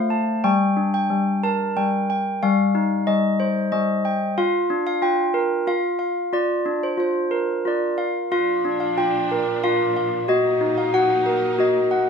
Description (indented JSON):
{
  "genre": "children's music, lullaby",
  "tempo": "92 BPM",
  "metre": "3/4",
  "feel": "straight",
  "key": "Bb major",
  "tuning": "A4 = 445 Hz",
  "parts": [
    { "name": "handbells", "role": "melody", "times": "0.0-12.1 s", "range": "G3 to A5", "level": "-19 LUFS", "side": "left 1 dB", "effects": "none" },
    { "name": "clear symphonic string section", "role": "sustained chords", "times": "8.3-12.1 s", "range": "Bb2 to Eb4", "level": "-30 LUFS", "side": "equal", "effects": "none" }
  ],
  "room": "moderate small room ambience, RT60 0.5 s",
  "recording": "minimal, uncompressed stereo recording",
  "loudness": "-19 LUFS",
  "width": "side -6 dB against mid",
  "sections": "0.0-8.3 A section; 8.3-12.1 A section",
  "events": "none",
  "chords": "0.4 Gm; 2.4 Cm/G; 4.4 Bb; 5.7 N.C.; 6.3 Bb; 10.3 Ebm/Bb"
}